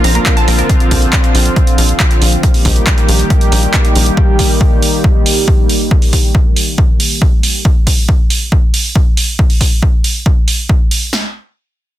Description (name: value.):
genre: uplifting trance.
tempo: 138 BPM.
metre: 4/4.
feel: straight.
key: unclear.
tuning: A4 = 439 Hz.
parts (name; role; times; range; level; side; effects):
wide unison pluck; melody; 0.0-0.7 s; Bb4 to Bb5; -20 LUFS; right 1 dB; vintage 12-bit sampler grit, sidechain pumping, ping-pong delay.
lush unison pad; sustained chords; 0.0-7.6 s; D3 to G4; -17 LUFS; equal; chorus, sidechain pumping.
liquid acid bass; arpeggios; 0.0-0.7 s; Bb3 to C4; -23 LUFS; right 2 dB; analog chorus, sidechain pumping, ping-pong delay.
tight sequencer bass; bass; 0.0-4.1 s; Bb1; -12 LUFS; equal; sidechain pumping.
punchy analog drum machine; drums; 0.0-11.0 s; handclaps, hi-hat; -16 LUFS; right 2 dB; none.
punchy analog drum machine; drums; 0.3-11.2 s; kick drum, snare drum; -11 LUFS; equal; none.
room: little or no reverb.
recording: dense, heavily limited modern master.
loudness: -9 LUFS.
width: side -14 dB against mid.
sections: 0.0-11.1 A section.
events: filter sweep on analog synth pad 0.0-7.7.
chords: 0.0 Bb; 2.4 Eb/Bb; 7.7 N.C..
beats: 0.26 | 0.69 1.13 1.56 2.00 | 2.43 2.87 3.30 3.74 | 4.17 4.61 5.04 5.48 | 5.91 6.35 6.78 7.22 | 7.65 8.09 8.52 8.96 | 9.39 9.82 10.26 10.69 | 11.13.